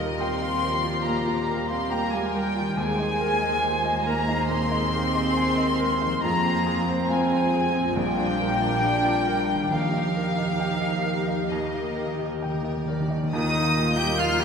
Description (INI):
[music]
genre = cinematic, emotional film score for orchestra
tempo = 69 BPM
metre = 4/4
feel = rubato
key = Eb major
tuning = A4 = 440 Hz
[part]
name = clear studio violin section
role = melody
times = 0.0-14.4 s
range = G4 to G6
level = -34 LUFS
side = left 1 dB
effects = none
[part]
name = warm studio violin section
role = second line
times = 0.0-12.4 s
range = Eb5 to C6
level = -29 LUFS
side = left 2 dB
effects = none
[part]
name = dark chamber viola section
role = accompaniment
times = 0.0-14.4 s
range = F3 to Bb4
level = -33 LUFS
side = right 3 dB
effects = none
[part]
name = felt-muted upright piano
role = accompaniment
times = 0.0-14.4 s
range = Bb1 to Ab5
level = -32 LUFS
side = left 1 dB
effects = none
[part]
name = clear French horn section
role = sustained chords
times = 0.0-14.4 s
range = G3 to G4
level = -32 LUFS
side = left 3 dB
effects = none
[part]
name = concert harp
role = arpeggios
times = 0.0-14.4 s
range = Bb2 to Bb5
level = -36 LUFS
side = left 3 dB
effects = none
[part]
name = dark studio double bass section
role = bass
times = 0.0-14.4 s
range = Bb1 to F2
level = -32 LUFS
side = right 4 dB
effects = none
[part]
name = warm studio cello section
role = bass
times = 0.0-14.4 s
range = Eb3 to C4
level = -30 LUFS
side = right 2 dB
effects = none
[part]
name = bright silver concert flute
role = second line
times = 0.2-14.4 s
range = Eb5 to C6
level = -30 LUFS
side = left 1 dB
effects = none
[part]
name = timpani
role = percussion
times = 2.8-14.4 s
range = Bb2 to Eb3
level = -32 LUFS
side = equal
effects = none
[part]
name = clear clarinet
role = second line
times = 13.3-14.4 s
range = Eb4 to G4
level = -31 LUFS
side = right 1 dB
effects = none
[sound]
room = wet church reverb, RT60 3.6 s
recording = none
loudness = -22 LUFS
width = side -6 dB against mid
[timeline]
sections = 0.0-13.3 A section; 13.3-14.4 B section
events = timpani fill 11.5-13.3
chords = 0.0 Ebadd9; 6.2 Fm; 8.0 Bb6; 9.7 Ebadd9; 11.5 Eb; 13.3 Ebadd9